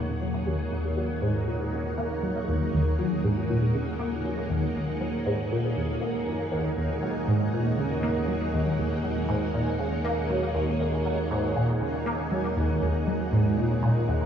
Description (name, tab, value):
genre	ambient, sequencer-driven space music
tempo	119 BPM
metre	4/4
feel	straight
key	Eb minor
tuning	A4 = 444 Hz
part	string machine, full ensemble	sustained chords	0.0-14.3 s	Bb3 to Gb5	-30 LUFS	right 1 dB	ensemble chorus
part	resonant blip pluck	riff	0.0-14.3 s	Eb2 to Bb3	-26 LUFS	equal	phaser, ensemble chorus, analog delay
part	analog drone	bass	0.0-14.3 s	Eb2	-34 LUFS	left 1 dB	chorus
room	wet huge ambient reverb, RT60 8.8 s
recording	worn, warbling old tape, cassette tape, warbly pitch drift, studio reverb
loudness	-24 LUFS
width	side -8 dB against mid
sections	0.0-14.3 A section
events	none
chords	0.0 Ebm